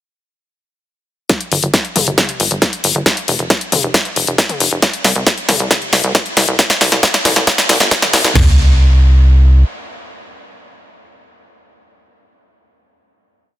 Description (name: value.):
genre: uplifting trance.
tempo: 136 BPM.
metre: 4/4.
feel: straight.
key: unclear.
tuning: A4 = 440 Hz.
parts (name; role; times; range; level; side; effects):
house drum kit; drums; 1.3-8.5 s; crash cymbal, kick drum, snare drum, toms; -15 LUFS; right 1 dB; high-pass filter on kick, high-pass filter on snare, high-pass filter on toms, high-pass filter on cymbals.
house drum kit; drums; 1.3-8.3 s; hi-hat, snare drum, toms; -14 LUFS; left 1 dB; high-pass filter on snare, sidechain pumping on hats, high-pass filter on hats, sidechain pumping on toms, high-pass filter on toms.
tight sequencer bass; bass; 1.5-9.6 s; F1 to C2; -12 LUFS; equal; tube saturation, sidechain pumping, high-pass filter.
room: light reverb.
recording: dense, heavily limited modern master.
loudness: -11 LUFS.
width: side -14 dB against mid.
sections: 1.3-8.4 build; 8.4-11.9 final note.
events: build-up 1.3-8.4; drum fill 1.3-8.4.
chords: none.